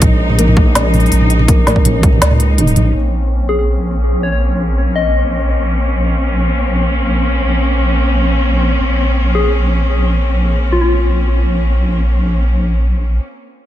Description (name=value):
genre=half-time drum and bass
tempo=164 BPM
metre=4/4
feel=half-time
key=Bb minor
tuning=A4 = 440 Hz
part: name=clear studio cello section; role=sustained chords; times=0.0-13.1 s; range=Ab3 to Eb4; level=-19 LUFS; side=left 2 dB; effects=sidechain pumping, low-pass filter
part: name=felt-muted upright piano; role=arpeggios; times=0.0-3.0 s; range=Bb3 to Eb4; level=-20 LUFS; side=equal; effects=tape echo
part: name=deep soft wobble bass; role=bass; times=0.0-13.2 s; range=Bb1 to Db2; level=-14 LUFS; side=equal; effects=chorus
part: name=electronic kick drum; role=drums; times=0.0-2.1 s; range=none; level=-11 LUFS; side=equal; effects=overdrive
part: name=organic electronic drum kit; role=drums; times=0.0-2.8 s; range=hi-hat, snare drum, toms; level=-16 LUFS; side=right 1 dB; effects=none
part: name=soft struck synth lead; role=melody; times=3.5-5.5, 9.3-11.2 s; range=F4 to Eb5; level=-20 LUFS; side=left 3 dB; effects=chorus, vintage 12-bit sampler grit, tape echo
room=light reverb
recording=none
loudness=-11 LUFS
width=side -12 dB against mid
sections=0.0-2.9 A section; 2.9-13.7 B section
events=drop 0.0-2.9; filter sweep on cello section 2.9-13.7; break 13.2-13.7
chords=0.0 Bbm; 2.9 Bbmadd9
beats=| 0.02 0.39 0.75 1.12 | 1.48 1.85 2.21 2.58 | 2.95 3.31 3.68 4.04 | 4.41 4.78 5.14 5.51 | 5.87 6.24 6.61 6.97 | 7.34 7.70 8.07 8.44 | 8.80 9.17 9.53 9.90 | 10.26 10.63 11.00 11.36 | 11.73 12.09 12.46 12.82 | 13.19